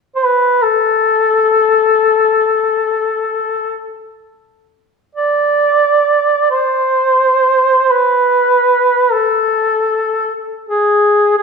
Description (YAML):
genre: caucasian folk, Caucasian lament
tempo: free time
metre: none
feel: none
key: A harmonic minor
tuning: A4 = 440 Hz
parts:
  - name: warm duduk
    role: solo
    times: 0.2-11.4 s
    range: G#4 to D5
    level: -11 LUFS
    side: equal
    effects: none
room: wet scoring stage reverb, RT60 1.4 s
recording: recorded in a church or concert hall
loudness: -11 LUFS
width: side -4 dB against mid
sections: 0.0-4.3 A section; 4.3-11.4 A section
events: none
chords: none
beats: free time